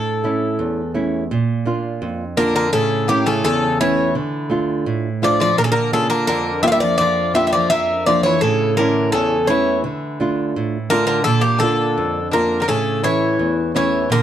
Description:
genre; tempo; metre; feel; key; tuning
greek folk, Greek bouzouki band; 84 BPM; 2/4; straight; unclear; A4 = 438 Hz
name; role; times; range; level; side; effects
Greek bouzouki; melody; 0.0-14.2 s; G4 to F5; -18 LUFS; equal; none
nylon-string guitar; accompaniment; 0.0-14.2 s; E2 to F4; -20 LUFS; right 2 dB; none
Greek bouzouki; second line; 2.4-14.2 s; C#3 to Bb3; -23 LUFS; left 5 dB; analog delay
room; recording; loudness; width
moderate small room reverb, RT60 0.5 s; dark, warm production; -16 LUFS; side -10 dB against mid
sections
0.0-1.3 A section; 1.3-12.7 B section; 12.7-14.2 A section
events
none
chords
0.0 A; 1.3 Bb; 2.7 A; 4.2 Dm; 5.6 Bb; 8.4 A; 9.8 Dm; 11.3 Bb; 12.7 A

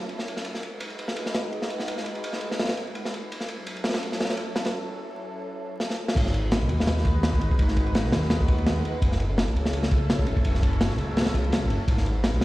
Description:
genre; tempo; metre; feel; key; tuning
drum and bass, jungle; 168 BPM; 4/4; swing 54% on 16ths; G# phrygian; A4 = 444 Hz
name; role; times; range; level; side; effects
lush unison pad; sustained chords; 0.0-12.4 s; F#3 to B4; -33 LUFS; equal; chorus, phaser
crunchy breakbeat drum kit; drums; 0.0-12.4 s; crash cymbal, kick drum, ride cymbal, snare drum; -25 LUFS; equal; high-pass filter on kick, high-pass filter on cymbals, high-pass filter on snare, high-pass filter on room
dark detuned saw bass; bass; 6.2-12.4 s; F#1 to D#2; -25 LUFS; equal; none
room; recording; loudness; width
light reverb, studio reverb; played on a big sound system in a bare room, large studio reverb, vinyl crackle; -23 LUFS; side -18 dB against mid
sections
0.0-6.2 A section; 6.2-12.4 B section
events
break 4.7-6.2; drum fill 5.8-6.2; drop 6.2-12.4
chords
0.4 G#m7; 3.3 F#m7; 6.2 G#m7; 9.0 F#m7; 11.9 G#m7

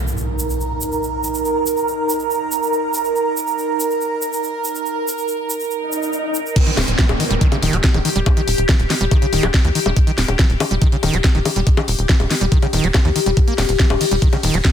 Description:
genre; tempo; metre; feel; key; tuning
psychedelic trance; 141 BPM; 4/4; straight; Eb major; A4 = 440 Hz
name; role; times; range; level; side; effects
evolving wavetable pad; sustained chords; 0.1-14.7 s; G4 to Bb4; -24 LUFS; left 1 dB; phaser, built-in reverb, sidechain pumping
impact, swell and downlifter; sound effects; 0.0-1.5, 5.8-10.0 s; none; -25 LUFS; equal; none
airy breathy pad; texture; 0.0-6.6 s; Eb4 to Bb5; -21 LUFS; right 3 dB; chorus, sidechain pumping
egg shaker; percussion; 0.1-6.5 s; none; -27 LUFS; right 1 dB; none
screaming distorted acid line; riff; 6.6-14.7 s; Db3 to Bb3; -23 LUFS; right 1 dB; distortion, chorus, auto-pan, sidechain pumping, dub echo
drum and bass drum kit; drums; 6.6-14.7 s; bongos, crash cymbal, hi-hat, ride cymbal, snare drum; -21 LUFS; left 2 dB; none
electronic kick drum; drums; 6.6-14.7 s; none; -14 LUFS; equal; none
tight sequencer bass; bass; 6.8-14.6 s; Eb1 to Eb2; -20 LUFS; equal; none
room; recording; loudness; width
light reverb, digital ambience; dense, heavily limited modern master; -15 LUFS; side -9 dB against mid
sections
0.0-6.6 A section; 6.6-14.7 B section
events
impact 0.0-1.5; swell 5.8-6.6; drop 6.6-14.7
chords
0.0 Eb5

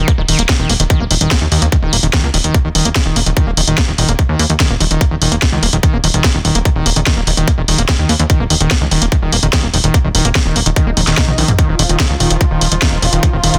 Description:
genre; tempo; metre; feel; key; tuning
psychedelic trance; 146 BPM; 4/4; straight; unclear; A4 = 440 Hz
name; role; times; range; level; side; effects
screaming distorted acid line; riff; 0.0-13.6 s; Eb3 to Bb3; -20 LUFS; equal; distortion, chorus, cassette tape, sidechain pumping, tape echo
plucky analog bass; bass; 0.0-13.6 s; Eb1 to Eb2; -18 LUFS; equal; tube saturation
drum and bass drum kit; drums; 0.1-13.6 s; hi-hat, snare drum, toms; -18 LUFS; equal; none
electronic kick drum; drums; 0.1-13.3 s; none; -15 LUFS; equal; none
swell; sound effects; 10.9-11.6 s; none; -30 LUFS; equal; none
bubbling stepped-filter texture; sustained chords; 11.6-13.6 s; F3 to F4; -23 LUFS; equal; chorus, built-in reverb, sidechain pumping
room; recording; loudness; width
digital ambience; dense, heavily limited modern master; -13 LUFS; mono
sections
0.0-13.6 A section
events
swell 10.9-11.6; drum fill 11.0-11.6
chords
0.0 Eb5

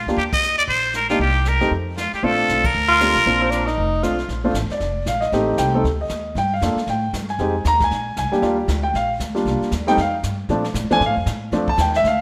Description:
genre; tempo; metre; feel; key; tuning
jazz, small-group swing and bop; 233 BPM; 4/4; swing 60% on 8ths; Bb major; A4 = 440 Hz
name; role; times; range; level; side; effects
trumpet with straight mute; melody; 0.0-4.0 s; F4 to Eb5; -22 LUFS; equal; none
upright bass; bass; 0.0-12.2 s; F1 to Bb2; -27 LUFS; equal; none
warm grand piano; accompaniment; 0.1-12.2 s; F3 to Bb5; -22 LUFS; equal; none
jazz brush drum kit; drums; 0.1-12.2 s; brushed snare drum, hi-hat, kick drum, ride cymbal, snare drum; -32 LUFS; equal; none
warm tenor saxophone; second line; 2.9-4.3 s; C4 to F4; -22 LUFS; equal; none
room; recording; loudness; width
moderate digital room reverb, RT60 1.0 s, small room ambience; rough home demo mix; -20 LUFS; mono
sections
0.0-4.3 A section; 4.3-12.2 B section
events
band accent 0.3, 2.6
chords
0.2 Eb5; 1.2 Cm7; 1.7 N.C.; 2.2 Bbmaj7; 5.3 Am7b5; 5.8 N.C.; 6.4 Gm7; 7.4 Fm7; 7.9 Bb9; 8.4 Ebmaj9; 9.5 Cm9; 10.0 Fsus2; 10.5 Bbmaj7

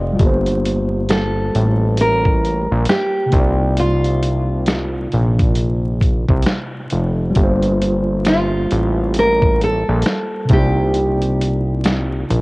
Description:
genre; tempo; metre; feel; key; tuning
lo-fi hip hop; 67 BPM; 4/4; swing 61% on 16ths; G minor; A4 = 440 Hz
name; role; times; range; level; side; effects
mellow tine electric piano; accompaniment; 0.0-12.4 s; C3 to C6; -22 LUFS; equal; medium stereo tremolo, cassette tape, low-pass filter
fat analog bass; bass; 0.0-12.4 s; F1 to C2; -18 LUFS; equal; none
dusty soul sampler-style drum kit; drums; 0.2-12.4 s; finger snaps, hi-hat, kick drum, snare drum; -18 LUFS; equal; cassette tape
nylon-string guitar; melody; 1.1-12.3 s; F4 to Bb4; -19 LUFS; right 1 dB; low-pass filter, cassette tape
room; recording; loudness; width
light reverb; home recording on cassette, vinyl crackle, nothing above 10.9 kHz; -14 LUFS; side -23 dB against mid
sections
0.0-12.4 A section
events
tine electric piano fill 0.0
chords
0.2 Gm11; 3.3 Cm11; 7.4 Gm11; 10.5 Cm11

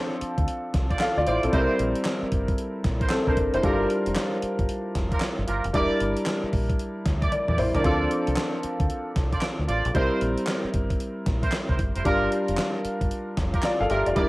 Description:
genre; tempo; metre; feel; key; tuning
R&B, new jack swing; 114 BPM; 4/4; swing 62% on 16ths; unclear; A4 = 440 Hz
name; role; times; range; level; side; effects
warm concert grand piano; accompaniment; 0.0-14.3 s; F3 to F5; -26 LUFS; equal; cassette tape
deep dub fingered electric bass; bass; 0.2-14.3 s; E1 to E2; -28 LUFS; equal; none
gated 80s digital drum machine; drums; 0.2-14.3 s; handclaps, hi-hat, kick drum, snare drum, toms; -27 LUFS; equal; gated reverb, gated reverb snare, overdrive
clear horn section; stabs; 0.9-14.3 s; E4 to D5; -31 LUFS; right 2 dB; cassette tape, tape echo
room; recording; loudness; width
moderate spring reverb, RT60 1.7 s; home recording on cassette; -22 LUFS; side -20 dB against mid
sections
0.0-14.3 A section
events
drum fill 7.3-7.8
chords
0.0 Dm7; 1.5 C7; 5.7 Em7b5; 7.8 Dm7; 9.9 C7; 12.1 Gm7

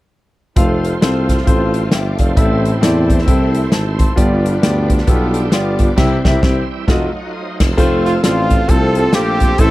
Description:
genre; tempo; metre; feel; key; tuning
uptempo gospel; 133 BPM; 4/4; swing 60% on 8ths; F major; A4 = 439 Hz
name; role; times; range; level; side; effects
clear concert grand piano; accompaniment; 0.6-9.7 s; G2 to C6; -18 LUFS; left 1 dB; none
bright studio string section; sustained chords; 0.6-9.7 s; E3 to A5; -28 LUFS; equal; none
bright tonewheel organ; sustained chords; 0.6-9.7 s; E3 to G5; -26 LUFS; right 4 dB; slow rotary speaker, overdrive, chorus vibrato
mellow tuba; bass; 0.6-9.7 s; F1 to E2; -17 LUFS; equal; none
natural country drum kit; drums; 0.6-9.7 s; crash cymbal, hi-hat, kick drum, snare drum; -15 LUFS; equal; none
bright trumpet; melody; 8.1-9.7 s; F4 to A4; -18 LUFS; right 3 dB; none
warm horn section; melody; 8.1-9.7 s; A3 to A4; -20 LUFS; left 3 dB; none
room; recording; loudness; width
little or no reverb; dry, close 1970s-style studio recording; -12 LUFS; side -17 dB against mid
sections
0.6-7.8 A section; 7.8-9.7 B section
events
band accent 6.0-7.8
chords
0.6 F; 2.4 Am; 4.2 G7; 6.0 C; 6.9 F7b9; 7.8 F

